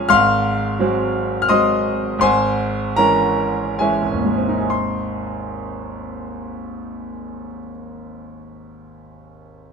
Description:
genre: classical, romantic character piece for solo piano.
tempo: 63-88 BPM.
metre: 3/4.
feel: rubato.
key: Ab major.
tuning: A4 = 440 Hz.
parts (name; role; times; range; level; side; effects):
clear concert grand piano; solo; 0.0-9.7 s; Ab1 to F6; -18 LUFS; equal; none.
room: light reverb.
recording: minimal, uncompressed stereo recording.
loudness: -16 LUFS.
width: side -5 dB against mid.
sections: 0.0-4.7 A section; 4.7-9.7 B section.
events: slowing down 0.0-4.7.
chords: 0.1 Ab7; 2.2 Dbm/Ab; 4.7 Ab.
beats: | 0.10 0.79 1.49 | 2.22 2.98 3.80 | 4.71 5.57 6.43 | 7.29 8.15 9.02.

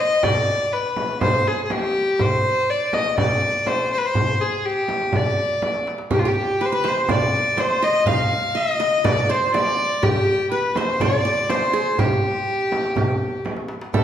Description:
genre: Arabic maqam ensemble.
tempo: 123 BPM.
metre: 4/4.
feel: straight.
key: G maqam hijaz.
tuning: A4 = 440 Hz.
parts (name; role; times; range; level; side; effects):
warm violin; melody; 0.0-14.0 s; F4 to F5; -20 LUFS; left 2 dB; none.
darbuka; percussion; 0.2-14.0 s; none; -27 LUFS; equal; none.
frame drum; percussion; 0.2-14.0 s; none; -25 LUFS; right 2 dB; none.
qanun; second line; 6.1-14.0 s; G4 to F5; -24 LUFS; right 4 dB; none.
room: wet recital hall reverb, RT60 1.4 s.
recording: heard from further back in the room.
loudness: -18 LUFS.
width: side -10 dB against mid.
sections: 0.0-13.9 A section.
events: drum fill 5.6-6.1, 13.5-13.9.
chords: none.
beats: | 0.24 0.73 1.22 1.71 | 2.20 2.69 3.18 3.67 | 4.16 4.64 5.13 5.62 | 6.11 6.60 7.09 7.58 | 8.07 8.56 9.05 9.54 | 10.03 10.52 11.01 11.50 | 11.99 12.47 12.96 13.45 | 13.94.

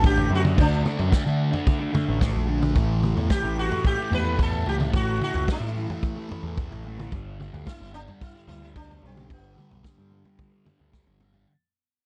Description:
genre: psychedelic rock.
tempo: 110 BPM.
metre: 4/4.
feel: straight.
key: unclear.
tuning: A4 = 440 Hz.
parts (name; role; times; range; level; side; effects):
sitar; melody; 0.0-10.9 s; B3 to B4; -31 LUFS; equal; slapback echo.
thick fuzz guitar; riff; 0.0-11.5 s; G2 to D4; -32 LUFS; equal; distortion, phaser.
growling picked electric bass; bass; 0.0-11.4 s; G1 to D3; -29 LUFS; equal; overdrive.
vintage drum kit; drums; 0.0-11.5 s; kick drum, snare drum, toms; -27 LUFS; equal; none.
congas; percussion; 3.3-11.5 s; none; -45 LUFS; equal; none.
room: little or no reverb.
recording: dry, close 1970s-style studio recording.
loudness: -24 LUFS.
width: mono.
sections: 0.0-11.5 A section.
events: fade-out 0.0-11.5; drum fill 10.9-11.5.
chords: 0.0 D; 2.8 A5; 7.1 G.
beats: 0.04 | 0.58 1.12 1.67 2.22 | 2.76 3.31 3.85 4.40 | 4.94 5.49 6.03 6.58 | 7.12 7.67 8.21 8.76 | 9.30 9.85 10.39 10.94.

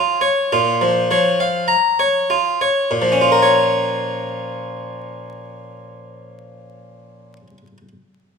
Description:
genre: classical, baroque-style suite movement for harpsichord.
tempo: 50 BPM.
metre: 4/4.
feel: rubato.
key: Bb minor.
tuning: A4 = 440 Hz.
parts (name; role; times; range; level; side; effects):
harpsichord; solo; 0.0-7.9 s; Bb2 to Bb5; -16 LUFS; equal; none.
room: moderate recital hall reverb, RT60 1.7 s.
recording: minimal, uncompressed stereo recording, vinyl crackle.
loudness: -14 LUFS.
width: side -5 dB against mid.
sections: 0.0-2.9 A section; 2.9-7.7 B section.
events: slowing down 0.0-2.9.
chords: 0.0 Bbm.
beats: 0.51 1.68 | 2.90 4.08 5.27 6.46.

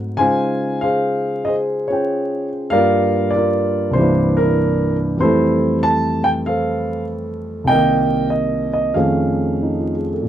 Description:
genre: solo jazz.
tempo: 96 BPM.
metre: 4/4.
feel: swing 68% on 8ths, rubato.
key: F major.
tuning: A4 = 439 Hz.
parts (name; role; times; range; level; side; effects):
dark baby grand piano; solo; 0.0-10.3 s; C2 to A5; -16 LUFS; equal; slapback echo.
room: light reverb.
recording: dry, close 1970s-style studio recording, vinyl crackle.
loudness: -15 LUFS.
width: side -11 dB against mid.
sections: 0.0-10.3 A section.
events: none.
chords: 0.2 Dbmaj9; 2.7 Gm7; 4.0 C9; 5.2 Fmaj9; 7.7 Cm7; 9.0 F7alt.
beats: | 0.20 0.84 1.48 2.11 | 2.73 3.35 3.97 4.58 | 5.20 5.82 6.44 7.07 | 7.69 8.32 8.96 9.62.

